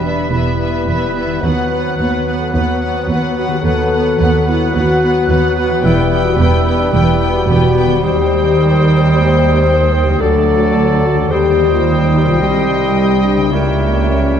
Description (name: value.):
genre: classical, dramatic, fast romantic movement for symphony orchestra.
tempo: 109 BPM.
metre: 4/4.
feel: straight.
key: E minor.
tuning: A4 = 441 Hz.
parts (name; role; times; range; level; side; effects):
rich symphonic violin section; melody; 0.0-14.4 s; D5 to G5; -24 LUFS; left 5 dB; none.
bright clarinet; second line; 0.0-14.4 s; A4 to C5; -24 LUFS; left 2 dB; none.
rich symphonic violin section; second line; 0.0-14.4 s; A4 to E5; -26 LUFS; left 2 dB; none.
warm oboe; second line; 0.0-14.4 s; C#5 to B5; -25 LUFS; right 1 dB; none.
mellow bassoon; accompaniment; 0.0-14.4 s; F#3 to G3; -22 LUFS; right 2 dB; none.
warm symphonic viola section; accompaniment; 0.0-14.4 s; F#3 to B3; -24 LUFS; right 1 dB; none.
mellow French horn section; sustained chords; 0.0-14.4 s; A3 to C5; -18 LUFS; left 5 dB; none.
concert harp; arpeggios; 0.0-14.4 s; C3 to C5; -23 LUFS; left 6 dB; none.
rich studio double bass section; bass; 0.0-14.4 s; E1 to D#2; -18 LUFS; right 3 dB; none.
rich symphonic cello section; bass; 0.0-14.4 s; C2 to E2; -18 LUFS; right 3 dB; none.
room: moderate scoring stage reverb, RT60 1.6 s.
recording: dark, warm production.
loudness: -11 LUFS.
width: side -8 dB against mid.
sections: 0.0-14.4 A section.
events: none.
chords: 0.0 Em; 1.4 B/D#; 5.8 Em; 8.0 Cm/Eb; 10.2 D; 11.3 Cm/Eb; 12.4 Cm; 13.5 C#dim7.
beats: 0.32 0.88 | 1.43 1.99 2.54 3.09 | 3.64 4.19 4.75 5.30 | 5.84 6.38 6.93 7.48 | 8.03 8.57 9.12 9.67 | 10.22 10.77 11.32 11.87 | 12.42 12.97 13.53 14.09.